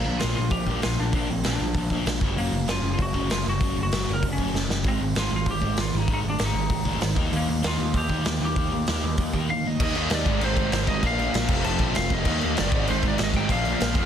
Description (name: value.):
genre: punk rock.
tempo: 194 BPM.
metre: 4/4.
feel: straight.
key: unclear.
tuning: A4 = 441 Hz.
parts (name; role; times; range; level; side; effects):
lightly driven lead guitar; melody; 0.0-14.1 s; Bb3 to A5; -30 LUFS; left 2 dB; ping-pong delay.
sludgy distorted guitar; riff; 0.0-14.1 s; F2 to Eb4; -28 LUFS; right 1 dB; overdrive.
growling picked electric bass; bass; 0.0-14.1 s; F1 to Eb2; -29 LUFS; equal; overdrive.
raw garage drum kit; drums; 0.2-14.0 s; crash cymbal, hi-hat, kick drum, snare drum; -26 LUFS; equal; none.
biting overdriven guitar; riff; 9.8-14.1 s; F2 to Eb4; -29 LUFS; equal; none.
room: little or no reverb.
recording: dense, heavily limited modern master.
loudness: -22 LUFS.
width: side -9 dB against mid.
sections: 0.0-9.8 A section; 9.8-14.1 B section.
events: drum fill 4.5-4.9.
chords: 0.0 Bb; 2.2 Gb5; 4.9 Ab5; 7.2 Eb; 10.3 Ab; 11.0 Bb; 11.5 F; 12.3 Eb; 12.7 Ab; 13.5 Bb.